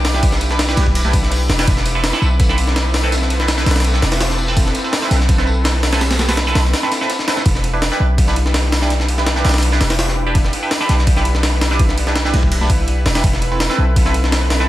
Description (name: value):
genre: drum and bass, jungle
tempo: 166 BPM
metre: 4/4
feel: straight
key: E minor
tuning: A4 = 444 Hz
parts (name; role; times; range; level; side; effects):
- lush unison pad; sustained chords; 0.0-14.7 s; C4 to B4; -25 LUFS; equal; chorus, vintage 12-bit sampler grit
- warm 808-style bass; bass; 0.0-14.7 s; E1 to B1; -17 LUFS; equal; none
- crunchy breakbeat drum kit; drums; 0.0-7.5 s; hi-hat, snare drum, tambourine; -29 LUFS; left 2 dB; high-pass filter on hats, high-pass filter on snare, high-pass filter on perc, high-pass filter on room
- jungle sampler-style drum kit; drums; 0.0-14.7 s; hi-hat, kick drum, ride cymbal, snare drum; -17 LUFS; equal; overdrive
- drifting glass-harmonics texture; texture; 0.0-7.5 s; D6; -33 LUFS; equal; none
- band-passed chord stab; stabs; 0.1-14.7 s; C4 to B4; -22 LUFS; right 2 dB; phaser, dub echo
room: light reverb, studio reverb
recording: vinyl crackle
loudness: -13 LUFS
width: side -14 dB against mid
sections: 0.0-7.5 A section; 7.5-14.7 A section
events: drop 0.0-7.5, 7.5-14.7; break 6.7-7.5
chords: 0.0 Em7; 1.7 Amadd9/E; 7.5 Em7; 13.2 Amadd9/E